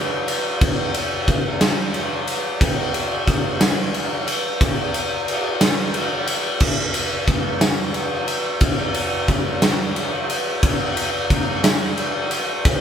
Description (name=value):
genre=rock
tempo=60 BPM (dotted quarters)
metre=6/8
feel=straight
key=none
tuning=none
part: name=big rock drum kit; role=drums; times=0.3-12.8 s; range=crash cymbal, kick drum, ride cymbal, snare drum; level=-18 LUFS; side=equal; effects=none
room=light reverb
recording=band playing live in one room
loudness=-18 LUFS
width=side -8 dB against mid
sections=0.0-12.8 A section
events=none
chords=none